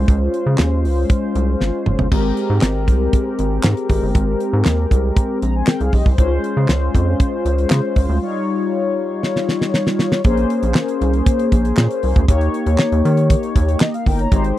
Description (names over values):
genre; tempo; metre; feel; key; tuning
early-eighties boogie funk; 118 BPM; 4/4; straight; Ab major; A4 = 438 Hz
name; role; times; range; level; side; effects
mellow synth brass; accompaniment; 0.0-14.6 s; G3 to Bb5; -19 LUFS; left 2 dB; chorus
rubbery square bass; bass; 0.0-14.5 s; Gb1 to Eb3; -18 LUFS; equal; none
damped 70s drum kit; drums; 0.1-14.6 s; crash cymbal, handclaps, hi-hat, kick drum, snare drum, toms; -16 LUFS; equal; none
room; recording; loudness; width
little or no reverb; dry, close 1970s-style studio recording; -15 LUFS; side -14 dB against mid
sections
0.0-10.3 A section; 10.3-14.6 B section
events
drum fill 1.6-2.1, 9.2-10.3; break 8.2-10.3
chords
0.0 Dbmaj7; 2.1 Abmaj9; 6.2 Dbmaj7; 8.2 Eb9; 10.3 Bbm9; 12.3 Eb7